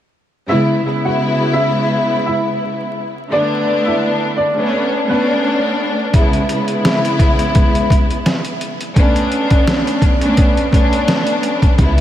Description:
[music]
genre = hip hop, boom-bap hip-hop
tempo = 85 BPM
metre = 4/4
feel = swing 56% on 16ths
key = B dorian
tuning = A4 = 442 Hz
[part]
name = warm upright piano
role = melody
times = 0.5-5.3 s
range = B3 to F#5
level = -20 LUFS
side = right 1 dB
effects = wide subtle chorus, tape echo
[part]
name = warm studio string section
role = accompaniment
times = 0.5-12.0 s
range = C#3 to E4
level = -16 LUFS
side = equal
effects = cassette tape
[part]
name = trip hop sampler-style drum kit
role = drums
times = 6.1-12.0 s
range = hi-hat, kick drum, snare drum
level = -14 LUFS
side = equal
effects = overdrive
[part]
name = deep dub fingered electric bass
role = bass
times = 11.8-12.0 s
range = C#2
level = -13 LUFS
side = equal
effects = none
[sound]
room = moderate huge ambient reverb, RT60 4.6 s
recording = dreamy mix soaked in reverb, vinyl crackle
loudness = -13 LUFS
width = side -11 dB against mid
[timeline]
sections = 0.5-11.8 A section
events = none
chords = 0.5 C#m7; 3.3 Bm9; 6.1 C#m7; 9.0 Bm9

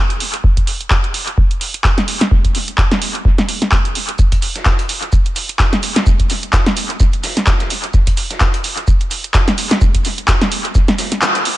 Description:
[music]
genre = house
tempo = 128 BPM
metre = 4/4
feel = swing 56% on 16ths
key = none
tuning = none
[part]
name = punchy analog drum machine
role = drums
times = 0.1-11.6 s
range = handclaps, hi-hat, snare drum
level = -17 LUFS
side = equal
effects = small room ambience, analog delay
[part]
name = electronic kick drum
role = drums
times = 0.4-10.9 s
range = none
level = -14 LUFS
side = equal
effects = small room ambience
[part]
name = dusty soul sampler-style drum kit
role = drums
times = 4.2-11.4 s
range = hi-hat, shaker, snare drum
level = -27 LUFS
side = right 1 dB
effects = overdrive, high-pass filter on snare, small room ambience, sidechain pumping on perc, high-pass filter on perc, sidechain pumping on hats, high-pass filter on hats, high-pass filter on room, analog delay
[sound]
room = light reverb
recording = echo-heavy mix, nothing above 10.7 kHz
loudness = -13 LUFS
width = side -16 dB against mid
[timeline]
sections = 0.0-11.6 A section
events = kick drops out 11.2-11.6; band accent 11.2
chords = none

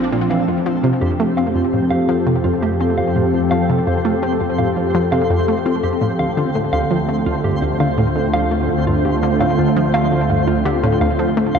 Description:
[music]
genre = ambient, sequencer-driven space music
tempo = 84 BPM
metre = 4/4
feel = straight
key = F major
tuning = A4 = 440 Hz
[part]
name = lush unison pad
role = sustained chords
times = 0.0-11.6 s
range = Bb2 to A4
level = -18 LUFS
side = equal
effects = chorus, phaser
[part]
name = mellow electric guitar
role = arpeggios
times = 0.0-11.6 s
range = F4 to F5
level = -24 LUFS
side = right 1 dB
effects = auto-pan, tape echo
[part]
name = analog pluck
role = riff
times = 0.0-11.6 s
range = D2 to C4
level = -20 LUFS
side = equal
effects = chorus, tape echo
[part]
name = fat analog bass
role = bass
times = 0.0-11.6 s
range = Bb1 to F2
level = -26 LUFS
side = equal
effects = tube saturation
[part]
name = twinkling granular texture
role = texture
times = 0.0-11.6 s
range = A3 to C5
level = -28 LUFS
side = equal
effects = built-in reverb
[sound]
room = wet cathedral reverb, RT60 6.2 s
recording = in a vast, echoing space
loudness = -15 LUFS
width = side -6 dB against mid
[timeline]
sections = 0.0-11.6 A section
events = none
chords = 0.5 F; 6.2 Dm7

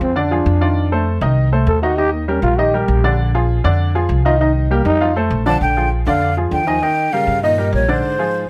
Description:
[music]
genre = jazz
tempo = 198 BPM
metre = 4/4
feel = straight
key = Bb mixolydian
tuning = A4 = 440 Hz
[part]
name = growling trombone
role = second line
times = 0.0-8.5 s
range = Ab2 to A4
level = -23 LUFS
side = equal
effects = none
[part]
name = clear upright piano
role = accompaniment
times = 0.0-8.4 s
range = D3 to F5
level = -22 LUFS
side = equal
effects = none
[part]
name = upright bass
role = bass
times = 0.0-8.0 s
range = Bb1 to G2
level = -20 LUFS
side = equal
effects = none
[part]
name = breathy mellow jazz flute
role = melody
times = 5.5-8.5 s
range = C5 to A5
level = -20 LUFS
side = equal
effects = slapback echo
[sound]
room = little or no reverb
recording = close, detailed microphones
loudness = -16 LUFS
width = mono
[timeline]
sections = 0.0-5.6 A section; 5.6-8.5 B section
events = trombone solo 0.0-5.6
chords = 0.0 Bb7 (rootless); 0.8 F7; 2.0 Eb; 3.2 Bb7; 4.4 Cm7; 5.0 F; 5.6 Bb7; 6.8 Eb7

